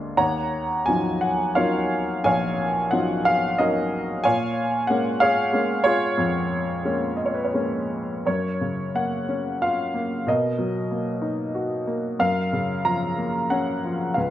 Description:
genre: classical, lyrical solo piano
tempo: 82-95 BPM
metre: 3/4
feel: rubato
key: F# major from 8.3 s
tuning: A4 = 440 Hz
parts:
  - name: warm upright piano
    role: solo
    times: 0.0-14.3 s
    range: Bb1 to Bb5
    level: -21 LUFS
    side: equal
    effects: none
room: moderate recital hall reverb, RT60 1.5 s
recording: none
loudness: -21 LUFS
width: side -12 dB against mid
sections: 0.0-8.3 A section; 8.3-14.3 B section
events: none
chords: 0.2 Ebm9; 4.2 Bbm7; 8.3 F#maj7; 10.3 Bmaj7; 12.2 F#maj7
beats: | 0.16 0.87 1.56 | 2.24 2.92 3.59 | 4.25 4.89 5.53 | 6.18 6.85 7.56 | 8.27 8.95 9.62 | 10.28 10.92 11.55 | 12.20 12.85 13.51 | 14.16

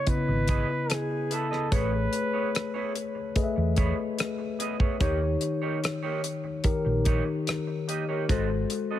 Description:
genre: lush 1970s-style soul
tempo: 73 BPM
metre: 4/4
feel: straight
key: unclear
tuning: A4 = 440 Hz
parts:
  - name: warm flugelhorn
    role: melody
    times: 0.0-3.3 s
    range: G#4 to C#5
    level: -32 LUFS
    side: right 1 dB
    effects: tape echo
  - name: tine electric piano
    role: accompaniment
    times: 0.0-9.0 s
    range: C#3 to E5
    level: -29 LUFS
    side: left 4 dB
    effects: lush chorus
  - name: electric guitar through a small old amp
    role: riff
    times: 0.1-9.0 s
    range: A#3 to E5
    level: -35 LUFS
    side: right 6 dB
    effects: none
  - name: hollow-body short-scale fingered electric bass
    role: bass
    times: 0.1-8.6 s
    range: G#1 to E2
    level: -28 LUFS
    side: right 1 dB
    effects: none
  - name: damped 70s drum kit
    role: drums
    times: 0.1-8.9 s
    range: hi-hat, kick drum, rim click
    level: -27 LUFS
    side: equal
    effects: none
room: small room reverb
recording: none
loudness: -25 LUFS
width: side -12 dB against mid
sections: 0.0-9.0 A section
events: none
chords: 0.0 C#m9; 1.7 Amaj9; 5.0 D#7; 8.3 G#7b9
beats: 0.07 0.90 | 1.72 2.54 3.36 4.18 | 5.00 5.83 6.65 7.47 | 8.29

